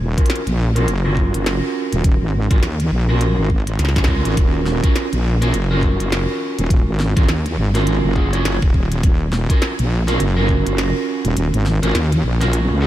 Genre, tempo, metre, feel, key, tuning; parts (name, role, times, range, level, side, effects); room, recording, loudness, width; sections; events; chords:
glitch hop; 103 BPM; 4/4; swing 59% on 16ths; Eb minor; A4 = 440 Hz
wobble bass; bass; 0.0-12.9 s; Eb1 to Eb2; -18 LUFS; equal; chorus
electric guitar at the edge of break-up; stabs; 0.2-12.9 s; Db4 to Db5; -22 LUFS; right 2 dB; wide subtle chorus, sidechain pumping, low-pass filter, tape echo
electronic kick drum; drums; 0.2-10.6 s; -16 LUFS; equal; overdrive
glitchy drum kit; drums; 0.2-12.7 s; hi-hat, snare drum; -27 LUFS; equal
light reverb; vinyl crackle; -15 LUFS; side -13 dB against mid
0.0-12.9 A section
filter sweep on clean electric guitar 0.0-12.9; kick drops out 11.4-12.9
0.0 Ebm7